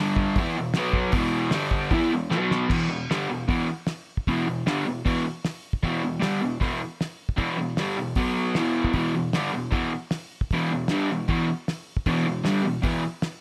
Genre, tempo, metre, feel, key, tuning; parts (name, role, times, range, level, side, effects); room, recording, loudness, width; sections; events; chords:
garage rock duo or trio; 154 BPM; 4/4; straight; A4 = 440 Hz
raw garage guitar; riff; 0.0-13.0 s; E2 to E4; -26 LUFS; equal; overdrive
cloth-damped thuddy drum kit; drums; 0.2-13.3 s; crash cymbal, hi-hat, kick drum, snare drum; -31 LUFS; equal
small room ambience; -26 LUFS; mono
0.0-2.7 A section; 2.7-13.4 B section
drum fill 2.3-2.7
0.4 E5; 0.8 B5; 1.1 E5; 1.5 G5; 1.9 E5; 2.3 B5; 2.7 E5; 8.2 B5; 8.6 E5